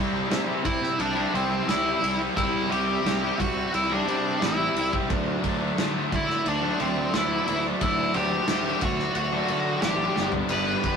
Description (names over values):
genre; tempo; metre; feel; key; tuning
quiet-loud alternative rock; 88 BPM; 4/4; straight; unclear; A4 = 439 Hz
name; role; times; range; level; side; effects
cranked stack guitar; riff; 0.0-11.0 s; G2 to E4; -31 LUFS; right 5 dB; overdrive
fuzz guitar; riff; 0.0-11.0 s; G2 to E4; -29 LUFS; left 3 dB; distortion
fuzz fingered electric bass; bass; 0.0-11.0 s; G1 to D3; -32 LUFS; equal; overdrive
loose indie drum kit; drums; 0.3-11.0 s; crash cymbal, kick drum, ride cymbal, snare drum, toms; -29 LUFS; right 1 dB; none
octave-fuzz lead guitar; melody; 0.6-11.0 s; C4 to B5; -26 LUFS; left 1 dB; distortion
room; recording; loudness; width
moderate stone room reverb, RT60 0.9 s; rough rehearsal-room recording, warm saturation; -22 LUFS; side -6 dB against mid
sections
0.0-11.0 A section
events
drum fill 10.2-10.5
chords
0.0 Dadd9; 10.2 G